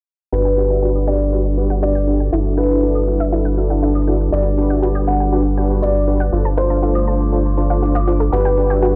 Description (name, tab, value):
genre	progressive house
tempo	120 BPM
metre	4/4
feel	straight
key	G major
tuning	A4 = 440 Hz
part	warm grand piano	melody	0.3-9.0 s	B4 to F#5	-24 LUFS	equal	digital delay
part	evolving wavetable pad	sustained chords	0.3-9.0 s	G3 to B4	-26 LUFS	equal	chorus, built-in reverb
part	analog pluck	arpeggios	0.3-8.9 s	E4 to A5	-28 LUFS	equal	chorus, digital delay
part	supersaw stab	stabs	0.3-9.0 s	D4 to F5	-23 LUFS	equal	low-pass filter, digital delay
part	round analog bass	bass	0.3-9.0 s	G1	-20 LUFS	equal	none
part	backwards swelling texture	texture	1.6-9.0 s	D6	-42 LUFS	equal	none
part	electronic hi-hat and woodblock	drums	0.6-8.7 s	none	-37 LUFS	equal	overdrive, low-pass filter on hats, low-pass filter on perc, low-pass filter on room
room	light reverb, digital ambience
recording	dark, warm production, low-pass filter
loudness	-17 LUFS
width	mono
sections	0.3-9.0 A section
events	filter sweep on drum 0.3-9.0; filter sweep 0.3-9.0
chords	0.3 Gmaj7; 2.3 Dadd9/G; 4.3 Gmaj7; 6.3 F6/G; 8.3 Gmaj7